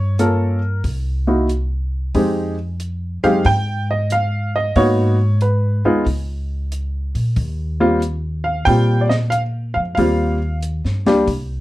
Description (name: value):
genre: jazz piano trio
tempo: 92 BPM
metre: 4/4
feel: swing 67% on 8ths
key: Eb major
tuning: A4 = 440 Hz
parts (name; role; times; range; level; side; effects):
- warm baby grand piano; melody; 0.0-11.3 s; G3 to G5; -17 LUFS; equal; none
- upright bass; bass; 0.0-11.6 s; C2 to Bb2; -20 LUFS; equal; none
- compact cocktail drum kit; drums; 0.2-11.5 s; hi-hat, kick drum, snare drum; -25 LUFS; left 1 dB; none
room: light reverb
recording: dark, warm production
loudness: -16 LUFS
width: side -16 dB against mid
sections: 0.0-11.6 A section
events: none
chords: 0.0 Gm7b5; 0.8 N.C.; 2.1 Fm7; 4.8 Abm7; 6.1 Bbm/Db; 7.4 Eb6